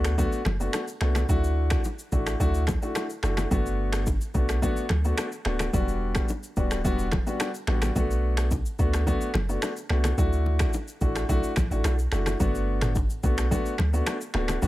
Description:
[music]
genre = afrobeats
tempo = 108 BPM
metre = 4/4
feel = straight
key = G major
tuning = A4 = 440 Hz
[part]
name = warm concert grand piano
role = accompaniment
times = 0.0-14.7 s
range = G3 to F#4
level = -30 LUFS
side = left 1 dB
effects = none
[part]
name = punchy sub bass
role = bass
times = 0.0-14.7 s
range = D1 to D2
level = -26 LUFS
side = equal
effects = none
[part]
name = afro-pop drum kit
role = drums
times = 0.0-14.7 s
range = finger snaps, kick drum, rim click, shaker, toms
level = -28 LUFS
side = equal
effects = none
[part]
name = congas and bongos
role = percussion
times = 0.2-14.7 s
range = none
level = -34 LUFS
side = left 1 dB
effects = none
[sound]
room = digital ambience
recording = none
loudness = -23 LUFS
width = side -16 dB against mid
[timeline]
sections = 0.0-12.4 A section; 12.4-14.7 B section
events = none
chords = 0.0 Bm7; 1.3 Dadd9; 3.5 Gmaj7; 5.7 Em7; 8.0 Bm7; 10.2 Dadd9; 12.4 Gmaj7

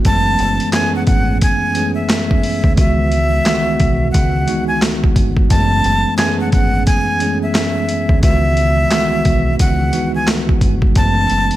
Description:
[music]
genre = hip hop, boom-bap hip-hop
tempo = 88 BPM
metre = 4/4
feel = swing 61% on 16ths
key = C# minor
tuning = A4 = 441 Hz
[part]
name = bell-like tine electric piano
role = accompaniment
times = 0.0-11.6 s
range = C#2 to G#4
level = -18 LUFS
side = equal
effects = fast stereo tremolo, cassette tape
[part]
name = boom bap sampler-style drum kit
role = drums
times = 0.0-11.6 s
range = handclaps, hi-hat, kick drum, snare drum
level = -16 LUFS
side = equal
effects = none
[part]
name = breathy bright jazz flute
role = melody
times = 0.1-11.6 s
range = E5 to A5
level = -19 LUFS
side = equal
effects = digital delay
[part]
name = deep dub fingered electric bass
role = bass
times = 0.1-11.5 s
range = F#1 to D2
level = -18 LUFS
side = equal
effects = none
[sound]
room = little or no reverb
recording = vinyl crackle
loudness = -12 LUFS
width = side -14 dB against mid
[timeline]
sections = 0.0-11.6 A section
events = none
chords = 0.1 F#m11; 2.8 C#m11; 5.5 F#m11; 8.2 C#m11; 11.0 F#m11

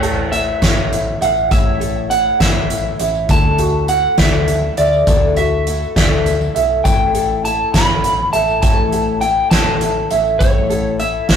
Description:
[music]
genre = indie folk with a building arrangement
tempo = 67 BPM (dotted quarters)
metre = 6/8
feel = straight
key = unclear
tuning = A4 = 440 Hz
[part]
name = electric guitar through a small old amp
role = melody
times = 0.0-11.4 s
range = C#5 to B5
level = -18 LUFS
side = left 1 dB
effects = harmonic tremolo
[part]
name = clear upright piano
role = accompaniment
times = 0.0-11.4 s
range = A1 to G5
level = -32 LUFS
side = left 1 dB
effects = none
[part]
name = picked twelve-string acoustic guitar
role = accompaniment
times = 0.0-11.4 s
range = A2 to C#5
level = -23 LUFS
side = left 8 dB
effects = none
[part]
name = ukulele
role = arpeggios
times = 0.0-11.4 s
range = E4 to E5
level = -22 LUFS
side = right 6 dB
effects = none
[part]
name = hollow-body short-scale fingered electric bass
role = bass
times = 0.0-11.4 s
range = A1 to D2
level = -23 LUFS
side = equal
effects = none
[part]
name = soft-mallet drum kit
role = drums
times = 0.0-11.4 s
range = hi-hat, kick drum, snare drum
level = -17 LUFS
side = equal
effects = none
[part]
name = tambourine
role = percussion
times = 0.6-11.4 s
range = none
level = -35 LUFS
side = right 7 dB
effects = none
[sound]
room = moderate studio reverb, RT60 0.6 s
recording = rough rehearsal-room recording, warm saturation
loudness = -13 LUFS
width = side -8 dB against mid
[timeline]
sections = 0.0-11.4 A section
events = none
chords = 0.0 A; 3.3 Dadd9; 6.8 A

